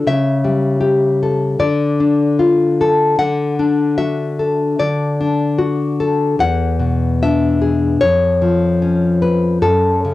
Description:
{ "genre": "romantic piece for solo classical guitar", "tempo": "75 BPM", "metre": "4/4", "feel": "rubato", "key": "unclear", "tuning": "A4 = 440 Hz", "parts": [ { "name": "nylon-string guitar", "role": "solo", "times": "0.0-10.1 s", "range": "E2 to F#5", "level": "-13 LUFS", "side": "left 2 dB", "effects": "cassette tape" } ], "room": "moderate small room reverb, RT60 0.5 s", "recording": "home recording on cassette", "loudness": "-13 LUFS", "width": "side -16 dB against mid", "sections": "0.0-10.1 A section", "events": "none", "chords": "0.1 A7/C#; 1.6 Dm; 3.2 Dadd9; 6.4 E7; 8.0 C#7/E#; 9.6 F#m" }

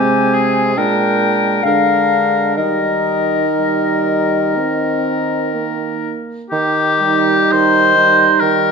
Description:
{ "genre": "classical, slow romantic movement for wind quintet", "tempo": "57-71 BPM", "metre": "4/4", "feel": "rubato", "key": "Eb major", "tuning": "A4 = 440 Hz", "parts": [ { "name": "concert flute", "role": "melody", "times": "0.0-8.7 s", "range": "Eb5 to Ab5", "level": "-19 LUFS", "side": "left 9 dB", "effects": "none" }, { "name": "clear oboe", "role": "second line", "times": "0.0-8.7 s", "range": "G4 to C5", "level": "-16 LUFS", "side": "left 2 dB", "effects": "none" }, { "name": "bright clarinet", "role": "accompaniment", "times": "0.0-8.7 s", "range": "C4 to Eb4", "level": "-21 LUFS", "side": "right 12 dB", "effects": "none" }, { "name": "warm French horn", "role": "accompaniment", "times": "0.0-8.7 s", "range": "G3 to C4", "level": "-22 LUFS", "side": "right 1 dB", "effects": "none" }, { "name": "mellow bassoon", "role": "bass", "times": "0.0-8.7 s", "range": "Bb2 to Eb3", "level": "-20 LUFS", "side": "right 4 dB", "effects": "none" } ], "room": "moderate recital hall reverb, RT60 1.4 s", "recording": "minimal, uncompressed stereo recording", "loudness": "-12 LUFS", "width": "side -5 dB against mid", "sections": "0.0-6.5 A section; 6.5-8.7 A section", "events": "none", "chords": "0.0 Abmaj7; 0.8 Bb7; 2.6 Eb" }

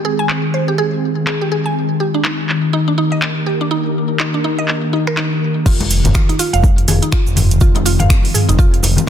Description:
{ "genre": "afro house", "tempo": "123 BPM", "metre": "4/4", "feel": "swing 59% on 16ths", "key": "F dorian", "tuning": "A4 = 441 Hz", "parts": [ { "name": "ethereal airy pad", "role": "sustained chords", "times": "0.0-9.1 s", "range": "Eb3 to Bb4", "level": "-19 LUFS", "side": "left 1 dB", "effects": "ensemble chorus, built-in reverb, sidechain pumping" }, { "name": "mallet-like synth pluck", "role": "arpeggios", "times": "0.0-8.7 s", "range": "D4 to Ab5", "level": "-20 LUFS", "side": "right 1 dB", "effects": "analog chorus, sidechain pumping, ping-pong delay" }, { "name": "afro-pop drum kit", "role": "drums", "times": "0.3-9.1 s", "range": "crash cymbal, finger snaps, handclaps, hi-hat, toms", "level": "-20 LUFS", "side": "right 1 dB", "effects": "overdrive, soft clipping on snare, low-pass filter on snare, low-pass filter on cymbals, low-pass filter on hats, low-pass filter on toms" }, { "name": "smooth gliding synth bass", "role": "bass", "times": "5.7-9.0 s", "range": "F1", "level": "-16 LUFS", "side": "equal", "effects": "sidechain pumping" }, { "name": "electronic kick drum", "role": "drums", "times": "5.7-8.7 s", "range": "none", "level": "-13 LUFS", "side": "equal", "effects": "overdrive" }, { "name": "cabasa", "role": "percussion", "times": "5.7-9.1 s", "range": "none", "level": "-26 LUFS", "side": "right 7 dB", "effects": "none" }, { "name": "congas", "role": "percussion", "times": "5.8-9.1 s", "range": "none", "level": "-21 LUFS", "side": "left 3 dB", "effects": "none" } ], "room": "light reverb, digital ambience", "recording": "dense, heavily limited modern master, faint mains hum", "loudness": "-13 LUFS", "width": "side -9 dB against mid", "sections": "0.0-5.7 A section; 5.7-9.1 B section", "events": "drop 5.7-9.1", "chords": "0.0 Ab; 1.8 Ebmaj7; 5.7 Fm7" }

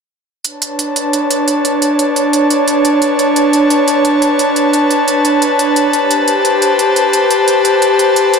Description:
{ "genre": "liquid drum and bass", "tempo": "175 BPM", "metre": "4/4", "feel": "straight", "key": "B minor", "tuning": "A4 = 440 Hz", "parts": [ { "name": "airy breathy pad", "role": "sustained chords", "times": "0.4-8.4 s", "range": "D4 to A5", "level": "-10 LUFS", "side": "equal", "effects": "chorus" }, { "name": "electronic hi-hat", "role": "drums", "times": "0.4-8.4 s", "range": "none", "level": "-19 LUFS", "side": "right 3 dB", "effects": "none" } ], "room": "moderate huge ambient reverb, RT60 3.9 s", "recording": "none", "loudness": "-10 LUFS", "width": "side -5 dB against mid", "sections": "0.4-8.4 A section", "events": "none", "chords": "0.4 Bm9; 5.9 Am9" }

